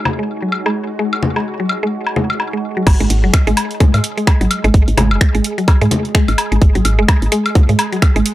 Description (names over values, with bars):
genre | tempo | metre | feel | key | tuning
minimal techno | 128 BPM | 4/4 | swing 58% on 16ths | unclear | A4 = 444 Hz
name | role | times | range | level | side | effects
bubbling stepped-filter texture | texture | 0.0-8.3 s | G#3 to G#4 | -28 LUFS | right 2 dB | chorus, built-in reverb, sidechain pumping
ethereal airy pad | texture | 0.0-2.9 s | D#4 to G#5 | -30 LUFS | left 1 dB | ensemble chorus, built-in reverb, sidechain pumping
congas and woodblock | percussion | 0.1-8.1 s | none | -19 LUFS | left 2 dB | tape echo
mallet-like synth pluck | riff | 0.2-8.2 s | F#3 to G#3 | -19 LUFS | equal | chorus, sidechain pumping, tape echo
woody FM bass | bass | 2.9-8.2 s | F#1 to G#2 | -15 LUFS | equal | tube saturation, sidechain pumping
electronic kick drum | drums | 2.9-8.1 s | none | -11 LUFS | equal | overdrive
punchy analog drum machine | drums | 2.9-8.3 s | crash cymbal, finger snaps, hi-hat | -22 LUFS | right 1 dB | overdrive
room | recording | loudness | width
little or no reverb | dry, gritty hardware recording, low-pass filter | -12 LUFS | side -15 dB against mid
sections
0.0-2.9 A section; 2.9-8.3 B section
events
drop 2.9-8.3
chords
0.0 G#sus4; 2.9 N.C.